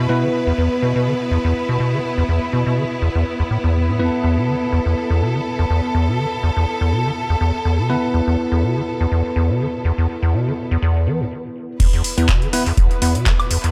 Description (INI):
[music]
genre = acid house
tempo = 123 BPM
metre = 4/4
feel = swing 55% on 16ths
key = unclear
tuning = A4 = 443 Hz
[part]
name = clear symphonic string section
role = sustained chords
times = 0.0-13.7 s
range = B3 to B4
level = -27 LUFS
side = equal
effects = sidechain pumping
[part]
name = acid bass, square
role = riff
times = 0.0-13.7 s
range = E2 to E3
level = -21 LUFS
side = equal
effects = lush chorus, vintage 12-bit sampler grit, sidechain pumping, tape echo
[part]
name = bell-like tine electric piano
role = stabs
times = 0.0-13.1 s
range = B3 to B4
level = -26 LUFS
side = equal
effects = subtle chorus, low-pass filter, analog delay
[part]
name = booming analog drum machine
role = drums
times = 11.8-13.7 s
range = crash cymbal, handclaps, hi-hat, woodblock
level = -26 LUFS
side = equal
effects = low-pass filter on hats, small room ambience, low-pass filter on cymbals, low-pass filter on snare, low-pass filter on perc, analog delay
[part]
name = electronic kick drum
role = drums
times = 11.8-13.4 s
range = none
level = -19 LUFS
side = equal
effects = small room ambience
[sound]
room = light reverb, digital ambience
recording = echo-heavy mix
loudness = -19 LUFS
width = mono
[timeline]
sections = 0.0-11.8 A section; 11.8-13.7 B section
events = break 11.3-11.8; drop 11.8-13.7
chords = 0.0 E5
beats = | 0.09 0.58 1.07 1.55 | 2.04 2.53 3.02 3.51 | 3.99 4.48 4.97 5.46 | 5.95 6.43 6.92 7.41 | 7.90 8.38 8.87 9.36 | 9.85 10.34 10.82 11.31 | 11.80 12.29 12.78 13.26